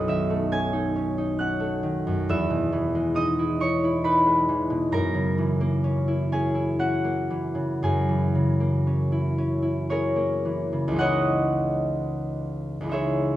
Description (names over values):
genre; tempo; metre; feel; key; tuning
classical, solo harp piece; 51-69 BPM; 3/4; rubato; unclear; A4 = 442 Hz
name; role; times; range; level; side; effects
concert harp; solo; 0.0-13.4 s; B1 to G#6; -22 LUFS; equal; none
room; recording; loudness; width
moderate recital hall reverb, RT60 1.7 s; minimal, uncompressed stereo recording; -22 LUFS; side -14 dB against mid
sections
0.0-11.0 A section; 11.0-13.4 B section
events
none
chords
0.0 B9; 2.3 Emaj7; 4.9 F#9; 11.0 C#madd9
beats
0.51 1.39 | 2.27 3.17 4.05 | 4.94 5.84 6.79 | 7.81 8.86 9.89 | 11.00 11.98 12.92